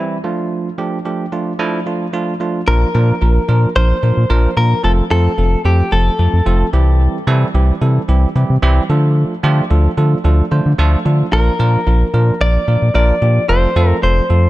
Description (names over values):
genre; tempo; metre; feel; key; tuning
dance-pop; 111 BPM; 4/4; straight; unclear; A4 = 439 Hz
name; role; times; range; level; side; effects
bell-like tine electric piano; accompaniment; 0.0-14.5 s; E3 to C5; -19 LUFS; right 3 dB; low-pass filter
direct-recorded clean electric guitar; melody; 2.7-6.7, 11.3-14.5 s; G4 to D5; -18 LUFS; left 1 dB; ping-pong delay
round analog bass; bass; 2.7-14.5 s; F1 to D3; -12 LUFS; equal; none
room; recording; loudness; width
little or no reverb; dark, warm production; -12 LUFS; side -16 dB against mid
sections
0.0-2.7 A section; 2.7-14.5 B section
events
build-up 0.0-2.7; filter sweep on tine electric piano 0.0-2.7; drop 2.7-14.5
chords
0.2 Dm; 2.7 Bb; 4.8 F; 6.7 C; 8.9 Dm; 11.3 Bb; 13.5 F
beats
| 0.52 1.06 1.60 2.14 | 2.68 3.22 3.76 4.30 | 4.84 5.38 5.92 6.46 | 7.00 7.54 8.08 8.62 | 9.16 9.71 10.25 10.79 | 11.33 11.87 12.41 12.95 | 13.49 14.03